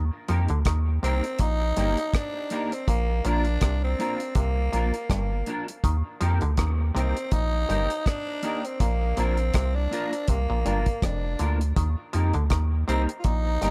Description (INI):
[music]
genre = roots reggae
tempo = 81 BPM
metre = 4/4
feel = swing 57% on 16ths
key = Eb major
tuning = A4 = 440 Hz
[part]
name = muted clav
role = riff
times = 0.0-13.7 s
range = F2 to F3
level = -36 LUFS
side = equal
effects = none
[part]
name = soft dub sub bass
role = bass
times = 0.0-13.7 s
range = F1 to F2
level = -27 LUFS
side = equal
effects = none
[part]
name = clean electric guitar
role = accompaniment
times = 0.3-13.7 s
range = Bb3 to Bb4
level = -35 LUFS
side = equal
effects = ensemble chorus, tape echo
[part]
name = deep reggae drum kit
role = drums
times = 0.3-13.7 s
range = hi-hat, kick drum, rim click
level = -29 LUFS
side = equal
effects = none
[part]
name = growling tenor saxophone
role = melody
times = 1.0-13.7 s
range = Bb3 to F4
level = -32 LUFS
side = equal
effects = tape echo
[sound]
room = light reverb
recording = none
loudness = -25 LUFS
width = mono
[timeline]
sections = 0.0-13.7 A section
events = none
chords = 0.0 Eb; 2.9 Bb; 5.8 Eb; 8.8 Bb; 11.8 Eb